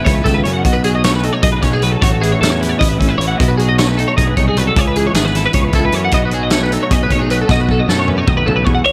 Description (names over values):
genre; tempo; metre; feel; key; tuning
math rock and midwest emo; 307 BPM (eighths); 7/8; straight; unclear; A4 = 438 Hz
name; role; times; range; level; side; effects
twelve-string electric guitar; accompaniment; 0.0-8.9 s; A2 to G#4; -23 LUFS; equal; none
twelve-string electric guitar; arpeggios; 0.0-8.9 s; G#4 to F#5; -20 LUFS; equal; ensemble chorus, slapback echo
fuzz fingered electric bass; bass; 0.1-8.9 s; G#1 to F#2; -20 LUFS; equal; overdrive
loose indie drum kit; drums; 0.1-8.9 s; hi-hat, kick drum, snare drum, toms; -19 LUFS; equal; none
twelve-string electric guitar; melody; 8.9 s; C#5; -12 LUFS; equal; lush chorus
room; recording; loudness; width
light reverb; none; -14 LUFS; mono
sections
0.0-8.9 A section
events
drum fill 7.5-8.9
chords
0.0 C#m7; 0.6 B7; 2.0 A6; 3.4 B7; 4.8 C#m7; 6.1 B7